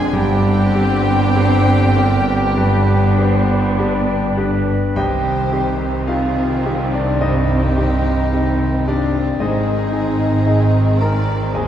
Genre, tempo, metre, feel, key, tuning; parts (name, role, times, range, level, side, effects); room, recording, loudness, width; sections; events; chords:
classical, romantic movement for piano and orchestra; 49-57 BPM; 4/4; rubato; C minor; A4 = 440 Hz
clear baby grand piano; melody; 0.0-11.7 s; C2 to Bb5; -19 LUFS; left 1 dB
rich studio violin section; melody; 0.0-11.7 s; F4 to Ab5; -31 LUFS; left 3 dB
mellow hollow large flute ensemble; second line; 0.0-11.7 s; D5 to Bb5; -28 LUFS; left 1 dB
rich studio violin section; second line; 0.0-11.7 s; G3 to Ab4; -32 LUFS; left 2 dB
warm studio viola section; accompaniment; 0.0-11.7 s; Eb3 to D4; -25 LUFS; right 1 dB
clear trombone section; sustained chords; 0.0-4.6 s; D3 to C4; -30 LUFS; right 2 dB
mellow French horn section; sustained chords; 0.0-11.7 s; Eb3 to C4; -28 LUFS; left 1 dB
clear trumpet; stabs; 0.0-4.6 s; G4; -25 LUFS; left 2 dB
dark studio double bass section; bass; 0.0-11.7 s; G1 to C2; -21 LUFS; right 2 dB
mellow tuba; bass; 0.0-4.7 s; G1; -25 LUFS; right 2 dB
rich studio cello section; bass; 0.0-11.7 s; G2 to C3; -21 LUFS; right 2 dB
warm oboe; second line; 0.1-3.7 s; G4; -30 LUFS; equal
warm clarinet; second line; 1.3-11.7 s; D4 to D5; -27 LUFS; left 2 dB
wet scoring stage reverb, RT60 1.6 s; heard from further back in the room; -14 LUFS; side -10 dB against mid
0.0-5.0 A section; 5.0-11.7 B section
0.1 Gsus4; 2.6 G; 5.0 Cm; 9.4 Ab